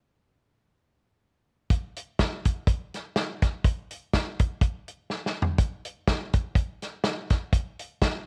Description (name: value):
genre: gospel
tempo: 124 BPM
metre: 4/4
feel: swing 55% on 8ths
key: none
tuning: none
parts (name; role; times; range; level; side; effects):
- warm soul drum kit; drums; 1.7-8.1 s; hi-hat, kick drum, snare drum, toms; -26 LUFS; equal; none
room: light reverb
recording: worn, warbling old tape, cassette tape, warbly pitch drift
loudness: -28 LUFS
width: mono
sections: 1.7-5.6 A section; 5.6-8.3 B section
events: drum fill 5.1-5.6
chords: none